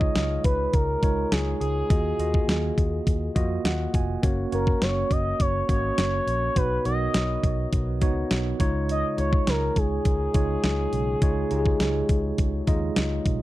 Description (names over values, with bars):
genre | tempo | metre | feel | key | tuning
1980s-style pop | 103 BPM | 4/4 | straight | unclear | A4 = 440 Hz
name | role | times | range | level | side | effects
expressive synth lead | melody | 0.0-13.0 s | G#4 to D#5 | -28 LUFS | left 1 dB | chorus, tape echo
mellow tine electric piano | accompaniment | 0.0-13.4 s | B2 to G#5 | -29 LUFS | right 2 dB | slow stereo tremolo
vintage muted fingered electric bass | bass | 0.0-13.4 s | E#1 to E#2 | -28 LUFS | equal | none
clean 12-bit digital drum machine | drums | 0.0-13.4 s | hi-hat, kick drum, snare drum | -24 LUFS | equal | overdrive
room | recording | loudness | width
little or no reverb | dry, close 1970s-style studio recording | -22 LUFS | side -16 dB against mid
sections
0.0-13.4 A section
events
tine electric piano fill 3.1-4.2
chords
0.0 C#add9; 1.9 D#madd9; 4.2 F#; 6.6 Badd9; 8.6 C#add9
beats
0.15 0.74 1.32 | 1.90 2.48 3.07 3.65 | 4.23 4.81 5.40 5.98 | 6.56 7.14 7.73 8.31 | 8.89 9.47 10.06 10.64 | 11.22 11.80 12.39 12.97